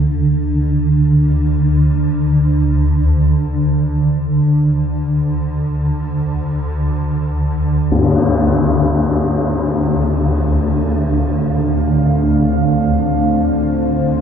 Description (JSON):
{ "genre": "dark ambient drone", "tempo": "free time", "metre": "none", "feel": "none", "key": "D minor", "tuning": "A4 = 442 Hz", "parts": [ { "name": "gamelan-type bossed gongs", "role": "arpeggios", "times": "0.0-5.8 s", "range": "D3", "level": "-24 LUFS", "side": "right 3 dB", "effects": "none" }, { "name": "swarming drone", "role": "drone", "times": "0.0-14.2 s", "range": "D2 to D3", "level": "-15 LUFS", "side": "equal", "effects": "built-in reverb" }, { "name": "deep dark ambient pad", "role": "sustained chords", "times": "9.3-14.2 s", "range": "A3 to F5", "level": "-18 LUFS", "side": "equal", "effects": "chorus, built-in reverb" }, { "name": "tam-tam", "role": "percussion", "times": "7.9-8.1 s", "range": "none", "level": "-18 LUFS", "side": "left 3 dB", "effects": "low-pass filter on cymbals" } ], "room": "wet cathedral reverb, RT60 6.5 s", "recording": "in a vast, echoing space", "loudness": "-13 LUFS", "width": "side -8 dB against mid", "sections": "0.0-7.9 A section; 7.9-14.2 B section", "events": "filter sweep on synth drone 0.0-7.9", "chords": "0.0 N.C.; 7.9 Dm7" }